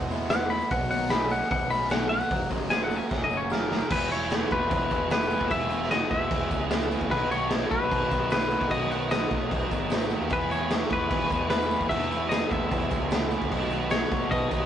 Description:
indie rock; 150 BPM; 4/4; straight; A4 = 440 Hz
overdriven electric guitar; riff; 0.0-14.7 s; B2 to A#4; -34 LUFS; right 4 dB
growling picked electric bass; bass; 0.0-14.7 s; E1 to E3; -34 LUFS; equal; overdrive
tambourine; percussion; 0.0-14.6 s; -55 LUFS; left 7 dB
raw garage guitar; riff; 0.1-14.7 s; B2 to E4; -34 LUFS; left 4 dB; overdrive
raw garage drum kit; drums; 0.1-14.6 s; crash cymbal, hi-hat, kick drum, snare drum; -27 LUFS; right 1 dB
twangy electric guitar; melody; 0.3-14.7 s; A#4 to B5; -28 LUFS; left 2 dB
glockenspiel with rubber mallets; second line; 3.9-14.7 s; B5 to F#6; -40 LUFS; left 2 dB
moderate studio reverb, RT60 0.5 s; rough rehearsal-room recording, nothing above 10.5 kHz; -24 LUFS; side -10 dB against mid
0.0-3.9 A section; 3.9-14.7 B section
clean electric guitar solo 0.0-3.9; drum fill 3.1-3.9
0.0 Eadd9; 0.7 Badd9; 2.3 F#add9; 3.9 E; 7.1 B; 10.3 E; 13.5 B

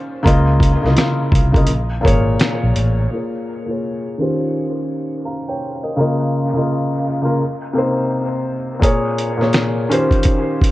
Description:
lo-fi hip hop; 84 BPM; 4/4; swing 62% on 16ths; Bb dorian; A4 = 440 Hz
felt-muted upright piano; accompaniment; 0.0-10.7 s; Bb2 to Bb5; -18 LUFS; left 1 dB; cassette tape, low-pass filter, dub echo
vintage muted fingered electric bass; bass; 0.3-3.1 s; Ab1 to Db2; -16 LUFS; equal
lo-fi sampler-style drum kit; drums; 0.3-3.0, 8.8-10.7 s; hi-hat, kick drum, snare drum; -16 LUFS; equal
light reverb, digital ambience; echo-heavy mix, cassette tape; -15 LUFS; side -16 dB against mid
0.0-3.1 A section; 3.1-10.7 B section
filter sweep on felt piano 3.1-10.7
0.3 Db69; 1.7 Bbm7; 4.2 Eb13; 6.0 Db69; 7.4 Cm7; 8.8 Bbm7; 9.9 Eb13

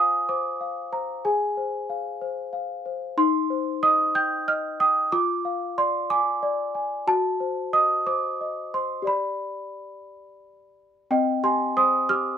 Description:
classical, lullaby for celesta; 62 BPM (dotted quarters); 6/8; straight; C minor; A4 = 440 Hz
worn celesta; solo; 0.0-12.4 s; C4 to G6; -22 LUFS; equal
light reverb; rough home demo mix; -22 LUFS; side -8 dB against mid
0.0-11.1 A section; 11.1-12.4 B section
0.0 Fm; 1.3 Fm/Ab; 3.2 Cm/Eb; 5.1 Ddim/F; 7.1 F#dim7; 9.1 G; 11.1 Cm

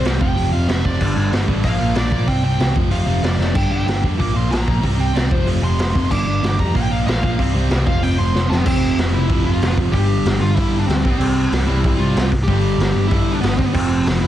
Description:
punk rock; 188 BPM; 4/4; straight; A4 = 440 Hz
smooth overdriven lead guitar; melody; 0.0-14.3 s; B3 to D6; -24 LUFS; right 1 dB; tape echo
distorted electric guitar; riff; 0.0-14.3 s; F2 to C4; -21 LUFS; equal; distortion
raw garage drum kit; drums; 0.0-14.1 s; crash cymbal, hi-hat, kick drum, snare drum; -20 LUFS; equal; soft clipping on kick, vintage 12-bit sampler grit
overdriven picked electric bass; bass; 0.1-14.3 s; F1 to G2; -20 LUFS; equal
light reverb, small room ambience; dense, heavily limited modern master, vinyl crackle; -15 LUFS; side -12 dB against mid
0.0-8.7 A section; 8.7-14.3 B section
lead electric guitar solo 0.0-8.7; drum fill 3.4, 8.3-8.7
0.2 F5; 1.0 G5; 1.6 Bb; 2.3 C5; 2.8 F5; 3.6 G5; 4.2 Bb5; 4.8 C5; 5.3 F5; 6.1 G5; 6.7 Bb5; 7.4 C5; 7.9 F5; 9.9 G5; 11.0 C; 12.5 G5; 13.7 F5

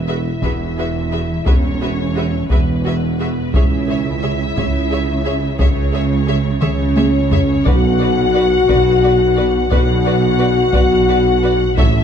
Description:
cinematic, epic orchestral film score; 58 BPM (dotted quarters); 6/8; straight; A4 = 440 Hz
rich symphonic violin section; melody; 0.0-12.0 s; B4 to F#5; -25 LUFS; left 5 dB
mellow French horn section; sustained chords; 0.0-12.0 s; B3 to F#4; -18 LUFS; left 4 dB
dark symphonic cello section; bass; 0.0-12.0 s; E2 to C#3; -23 LUFS; right 4 dB
dark symphonic double bass section; bass; 0.0-12.0 s; E1 to C#2; -21 LUFS; right 4 dB
mellow tuba; bass; 0.0-12.0 s; E1 to C#2; -22 LUFS; right 5 dB
warm symphonic violin section; second line; 0.1-11.9 s; B4 to E5; -28 LUFS; left 4 dB
warm symphonic viola section; accompaniment; 0.1-11.9 s; F#4 to C#5; -28 LUFS; right 2 dB
taiko ensemble; drums; 0.4-12.0 s; -17 LUFS; equal
timpani; percussion; 7.7-8.6 s; B2; -26 LUFS; left 1 dB
moderate scoring stage reverb, RT60 1.7 s; dark, warm production; -13 LUFS; side -8 dB against mid
0.0-12.0 A section
drum fill 6.6-7.7
0.0 Eadd9; 3.5 C#m; 7.7 Bm

